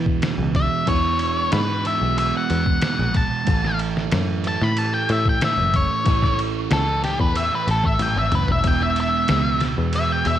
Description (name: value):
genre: psychedelic rock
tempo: 93 BPM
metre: 4/4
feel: straight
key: unclear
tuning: A4 = 440 Hz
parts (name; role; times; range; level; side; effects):
- fuzz guitar; riff; 0.0-10.4 s; E2 to A3; -26 LUFS; right 10 dB; distortion, phaser
- picked electric bass; bass; 0.0-10.4 s; E1 to E3; -24 LUFS; left 1 dB; none
- trip hop sampler-style drum kit; drums; 0.1-10.4 s; kick drum, ride cymbal, snare drum, toms; -24 LUFS; left 1 dB; none
- octave-fuzz lead guitar; melody; 0.6-10.4 s; G4 to B5; -22 LUFS; left 2 dB; distortion, slapback echo
room: light reverb, digital ambience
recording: 1960s-style stereo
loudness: -18 LUFS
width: side -11 dB against mid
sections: 0.0-10.4 A section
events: lead electric guitar solo 0.0-10.4; drum fill 8.0-8.6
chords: 0.0 E; 3.5 A5; 8.6 E5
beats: 0.23 | 0.88 1.53 2.18 2.83 | 3.48 4.12 4.77 5.42 | 6.07 6.71 7.36 8.00 | 8.65 9.29 9.94